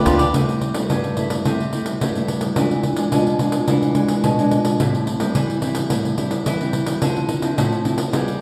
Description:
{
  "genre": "samba and choro",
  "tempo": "108 BPM",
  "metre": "4/4",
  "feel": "straight",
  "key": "C major",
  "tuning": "A4 = 439 Hz",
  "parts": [
    { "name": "nylon-string guitar", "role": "accompaniment", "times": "0.0-8.4 s", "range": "G2 to Ab4", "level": "-22 LUFS", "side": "equal", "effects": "none" },
    { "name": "pandeiro", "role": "percussion", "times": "0.1-8.4 s", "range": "none", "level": "-24 LUFS", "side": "equal", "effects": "none" }
  ],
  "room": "wet recital hall reverb, RT60 1.5 s",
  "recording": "recorded in a church or concert hall",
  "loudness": "-20 LUFS",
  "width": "mono",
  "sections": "0.3-8.4 A section",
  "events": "none",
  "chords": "0.3 C6; 2.6 E7b9; 4.8 Am7; 7.0 Dm9"
}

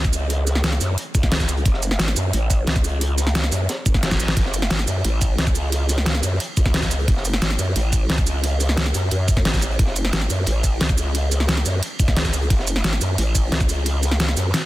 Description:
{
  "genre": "dark technical drum and bass",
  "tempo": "177 BPM",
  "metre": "4/4",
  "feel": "straight",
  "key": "F# minor",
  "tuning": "A4 = 441 Hz",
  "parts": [
    { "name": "growl bass", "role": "bass", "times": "0.0-14.5 s", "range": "F#1 to F#2", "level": "-21 LUFS", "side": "equal", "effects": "chorus, overdrive" },
    { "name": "dubstep drum kit", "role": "drums", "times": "0.0-14.6 s", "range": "hi-hat, ride cymbal, shaker, snare drum", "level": "-23 LUFS", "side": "equal", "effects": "none" },
    { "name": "electronic kick drum", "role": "drums", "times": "0.0-13.7 s", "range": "none", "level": "-20 LUFS", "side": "equal", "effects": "none" },
    { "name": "crunchy breakbeat drum kit", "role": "drums", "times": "0.1-14.6 s", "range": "hi-hat, snare drum", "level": "-34 LUFS", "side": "equal", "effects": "none" }
  ],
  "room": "small room reverb",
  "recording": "dense, heavily limited modern master",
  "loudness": "-18 LUFS",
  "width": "side -16 dB against mid",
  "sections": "0.0-14.7 A section",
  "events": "drum fill 4.0-4.4",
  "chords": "none"
}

